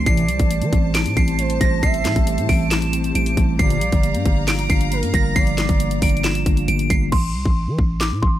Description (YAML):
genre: hip hop, trap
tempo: 136 BPM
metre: 4/4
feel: half-time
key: A phrygian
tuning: A4 = 441 Hz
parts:
  - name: soft synth bell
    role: melody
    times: 0.0-8.4 s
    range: C6 to E7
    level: -25 LUFS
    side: right 2 dB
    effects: chorus, low-pass filter
  - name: mellow tine electric piano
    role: accompaniment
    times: 0.0-7.1 s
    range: E3 to F4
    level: -25 LUFS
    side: equal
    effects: medium stereo tremolo, low-pass filter
  - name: warm studio string section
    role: sustained chords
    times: 0.0-7.1 s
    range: G4 to Bb5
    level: -33 LUFS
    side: left 2 dB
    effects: none
  - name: growling 808-style bass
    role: bass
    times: 0.0-8.4 s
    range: G1 to E3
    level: -21 LUFS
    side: equal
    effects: none
  - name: gliding portamento lead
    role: second line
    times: 0.1-6.2 s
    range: Bb4 to E5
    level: -29 LUFS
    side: right 5 dB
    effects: chorus, phaser, ping-pong delay
  - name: mellow synth brass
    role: stabs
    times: 0.1-0.3, 3.6-3.8 s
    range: A2 to F3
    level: -25 LUFS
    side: right 1 dB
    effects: chorus
  - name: trap drum kit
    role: drums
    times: 0.1-8.3 s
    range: crash cymbal, handclaps, hi-hat, kick drum, snare drum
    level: -20 LUFS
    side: equal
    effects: none
room: little or no reverb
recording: none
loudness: -16 LUFS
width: side -13 dB against mid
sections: 0.0-7.1 A section; 7.1-8.4 B section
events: hi-hats muted 7.1-8.4; filter sweep 7.1-8.4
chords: 0.1 Am7; 3.6 Gm7; 7.1 Am